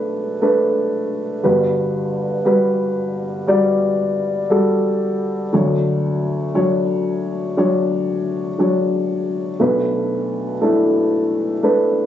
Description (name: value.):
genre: folk.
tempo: 59 BPM.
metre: 4/4.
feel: straight.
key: B minor.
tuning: A4 = 440 Hz.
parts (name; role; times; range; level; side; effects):
dark upright piano; solo; 0.0-12.1 s; G1 to D5; -16 LUFS; left 1 dB; none.
room: moderate studio reverb, RT60 0.5 s.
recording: recorded on a phone in the room, studio reverb, compression, nothing above 7.9 kHz.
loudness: -16 LUFS.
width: side -10 dB against mid.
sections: 0.0-12.1 A section.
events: none.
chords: 0.0 Bm7; 1.4 Gmaj7; 5.5 Dmaj7; 9.6 Bm7.